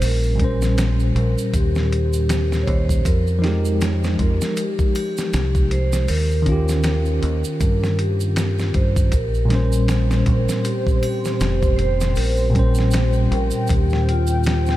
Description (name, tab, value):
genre	trip hop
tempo	79 BPM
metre	4/4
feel	swing 58% on 16ths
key	Bb dorian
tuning	A4 = 438 Hz
part	vibraphone with medium mallets	melody	0.0-14.8 s	F4 to Db5	-26 LUFS	equal	tape echo
part	bell-like tine electric piano	accompaniment	0.0-14.8 s	Bb2 to C5	-23 LUFS	equal	medium stereo tremolo, harmonic tremolo, tape echo
part	deep dub fingered electric bass	bass	0.0-14.8 s	F1 to G2	-20 LUFS	equal	none
part	dusty soul sampler-style drum kit	drums	0.0-14.8 s	hi-hat, kick drum, snare drum	-23 LUFS	equal	small room reverb
part	tube shaker and triangle	percussion	0.0-14.8 s	none	-38 LUFS	right 6 dB	none
part	dark analog pad	sustained chords	10.0-14.8 s	C5 to G5	-28 LUFS	right 1 dB	chorus
room	light reverb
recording	none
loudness	-17 LUFS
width	side -15 dB against mid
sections	0.0-14.8 A section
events	none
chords	0.0 Bbm69; 3.1 Fm9; 6.1 Eb9; 9.1 Bbm69